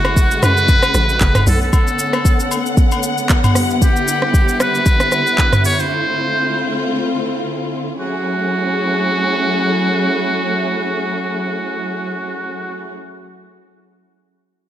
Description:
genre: amapiano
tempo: 115 BPM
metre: 4/4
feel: swing 55% on 16ths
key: unclear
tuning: A4 = 440 Hz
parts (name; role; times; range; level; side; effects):
- trumpet with metal mute; melody; 0.0-12.9 s; F#4 to C#5; -19 LUFS; equal; analog delay
- dark studio string section; sustained chords; 0.0-12.9 s; C#3 to F#5; -20 LUFS; equal; none
- hollow log drum bass; bass; 0.0-1.7 s; F#1 to F#2; -17 LUFS; equal; none
- afro-pop drum kit; drums; 0.0-5.9 s; handclaps, hi-hat, kick drum, rim click, shaker, toms; -15 LUFS; equal; none
- agogo bells; percussion; 0.1-3.5 s; none; -28 LUFS; left 6 dB; none
room: moderate plate reverb, RT60 2.3 s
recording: dreamy mix soaked in reverb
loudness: -14 LUFS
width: side -11 dB against mid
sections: 0.0-8.0 A section; 8.0-12.2 B section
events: drop 0.0-8.0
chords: 0.0 F#m9; 1.5 Bm9; 3.6 Em9; 5.9 Dm9; 8.0 F#m9

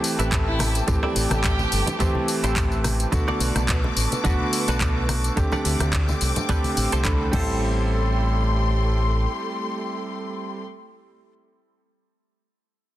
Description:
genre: nu-disco, nu disco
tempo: 107 BPM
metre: 4/4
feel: swing 55% on 16ths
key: A dorian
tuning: A4 = 440 Hz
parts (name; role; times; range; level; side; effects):
- warm electric grand piano; accompaniment; 0.0-10.6 s; D3 to B5; -27 LUFS; right 2 dB; dub echo
- warm studio string section; sustained chords; 0.0-10.6 s; A3 to D6; -31 LUFS; left 2 dB; sidechain pumping
- house drum kit; drums; 0.0-7.5 s; crash cymbal, handclaps, hi-hat, rim click, tambourine; -28 LUFS; equal; none
- direct-recorded clean electric guitar; riff; 0.2-11.3 s; D4 to D5; -33 LUFS; right 2 dB; wide subtle chorus, vintage 12-bit sampler grit, dub echo
- fingered electric bass with an envelope filter; bass; 0.2-9.3 s; F#1 to E2; -24 LUFS; equal; none
- electronic kick drum; drums; 0.3-7.5 s; none; -24 LUFS; equal; none
- rich chamber violin section; melody; 0.5-2.1 s; E4 to G4; -31 LUFS; right 1 dB; dub echo
- congas; percussion; 0.6-7.5 s; none; -31 LUFS; left 2 dB; none
room: light reverb, digital ambience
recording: dense, heavily limited modern master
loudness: -20 LUFS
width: side -14 dB against mid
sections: 0.0-7.6 A section; 7.6-9.9 B section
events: drop 0.0-7.6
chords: 0.0 Am7; 3.1 Bm7; 5.4 D7sus4; 7.3 Am7

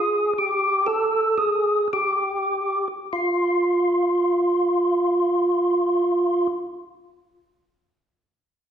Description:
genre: jazz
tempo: 92-127 BPM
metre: 4/4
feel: swing 68% on 8ths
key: unclear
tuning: A4 = 441 Hz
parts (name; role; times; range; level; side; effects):
- percussive tonewheel organ; solo; 0.0-6.5 s; F4 to A4; -19 LUFS; right 1 dB; slow rotary speaker, overdrive, chorus vibrato
room: wet recital hall reverb, RT60 1.4 s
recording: recorded in a church or concert hall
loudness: -19 LUFS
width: side -9 dB against mid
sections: 0.0-3.1 A section; 3.1-8.3 B section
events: slowing down 0.0-3.1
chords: none

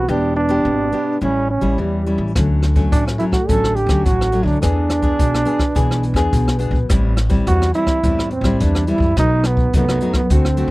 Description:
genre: samba and choro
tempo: 106 BPM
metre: 4/4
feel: straight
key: E minor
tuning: A4 = 440 Hz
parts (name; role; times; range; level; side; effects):
- dark trombone; second line; 0.0-10.7 s; G3 to A4; -19 LUFS; right 2 dB; none
- nylon-string guitar; accompaniment; 0.0-10.7 s; F#2 to G#4; -21 LUFS; left 2 dB; none
- upright bass; bass; 0.0-10.7 s; E1 to F#2; -19 LUFS; equal; none
- jazz brush drum kit; drums; 2.4-10.7 s; hi-hat, kick drum, rim click; -20 LUFS; equal; none
room: little or no reverb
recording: dry, close 1970s-style studio recording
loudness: -14 LUFS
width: side -20 dB against mid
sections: 0.0-10.7 A section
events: trombone solo 0.0-10.7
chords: 0.1 Em7; 1.2 A7; 2.4 Dmaj7; 4.6 E7; 6.9 Am7; 9.2 B7

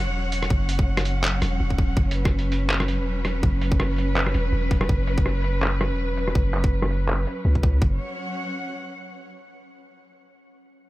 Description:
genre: half-time drum and bass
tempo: 164 BPM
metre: 4/4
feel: swing 56% on 16ths, half-time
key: unclear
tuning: A4 = 438 Hz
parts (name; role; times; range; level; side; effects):
- rich symphonic cello section; sustained chords; 0.0-9.2 s; F#3 to F#5; -29 LUFS; equal; sidechain pumping, low-pass filter
- long sustained 808-style bass; bass; 0.0-8.0 s; E1 to C#2; -24 LUFS; equal; none
- boom bap sampler-style drum kit; drums; 0.3-7.7 s; handclaps, hi-hat, rim click; -28 LUFS; equal; overdrive, low-pass filter on hats, low-pass filter on snare
- electronic kick drum; drums; 0.5-7.9 s; none; -22 LUFS; equal; none
room: little or no reverb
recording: none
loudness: -21 LUFS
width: side -17 dB against mid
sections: 0.0-7.8 A section; 7.8-9.3 B section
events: filter sweep on drum 0.0-7.8; filter sweep on cello section 0.0-7.8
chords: 0.0 F#5

